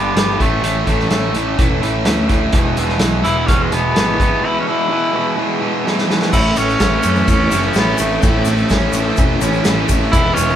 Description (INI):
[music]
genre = classic rock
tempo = 126 BPM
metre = 4/4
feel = straight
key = A major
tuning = A4 = 440 Hz
[part]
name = raspy tenor saxophone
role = melody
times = 0.0-10.6 s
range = G#3 to E4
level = -19 LUFS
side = equal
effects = none
[part]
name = distorted electric guitar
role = riff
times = 0.0-10.6 s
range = G2 to E4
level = -21 LUFS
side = left 5 dB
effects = distortion
[part]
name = overdriven electric guitar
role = riff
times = 0.0-10.6 s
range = E2 to E4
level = -20 LUFS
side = right 6 dB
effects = none
[part]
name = growling picked electric bass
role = bass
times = 0.0-10.5 s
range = E1 to F#2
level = -21 LUFS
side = equal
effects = overdrive
[part]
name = vintage drum kit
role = drums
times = 0.2-10.5 s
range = crash cymbal, hi-hat, kick drum, ride cymbal, snare drum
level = -18 LUFS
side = equal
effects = none
[part]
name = mellow tonewheel organ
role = sustained chords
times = 2.5-10.6 s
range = E3 to E4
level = -31 LUFS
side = left 1 dB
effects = none
[part]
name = tube shaker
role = percussion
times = 6.3-10.6 s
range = none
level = -30 LUFS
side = left 7 dB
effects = none
[sound]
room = moderate large studio reverb, RT60 0.9 s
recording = band playing live in one room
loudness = -13 LUFS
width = side -10 dB against mid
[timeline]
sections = 0.0-6.3 A section; 6.3-10.6 B section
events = break 4.4-6.3; drum fill 5.9-6.3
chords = 0.4 A; 2.5 E; 6.3 A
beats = 0.16 | 0.63 1.11 1.58 2.06 | 2.53 3.01 3.48 3.96 | 4.43 4.91 5.38 5.86 | 6.33 6.81 7.28 7.76 | 8.23 8.71 9.18 9.65 | 10.13